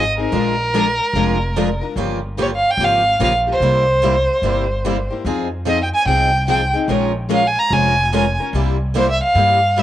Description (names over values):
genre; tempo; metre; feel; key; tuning
acoustic string swing (jazz manouche); 146 BPM; 4/4; swing 64% on 8ths; unclear; A4 = 442 Hz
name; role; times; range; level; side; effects
warm violin; melody; 0.0-9.8 s; Bb4 to Bb5; -17 LUFS; right 1 dB; cassette tape
picked steel-string acoustic guitar; accompaniment; 0.0-9.8 s; C3 to Bb4; -23 LUFS; left 9 dB; cassette tape
picked swing-style acoustic guitar; accompaniment; 0.0-9.8 s; C3 to Bb4; -25 LUFS; right 8 dB; cassette tape
upright bass; bass; 0.0-9.8 s; F1 to G2; -21 LUFS; equal; none
room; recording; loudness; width
light reverb, small room ambience; home recording on cassette; -15 LUFS; side -12 dB against mid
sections
0.0-9.8 A section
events
none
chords
0.3 Bb7; 2.0 Gm7b5; 3.6 C7; 5.3 Fm7; 6.9 Bbm7; 8.5 C7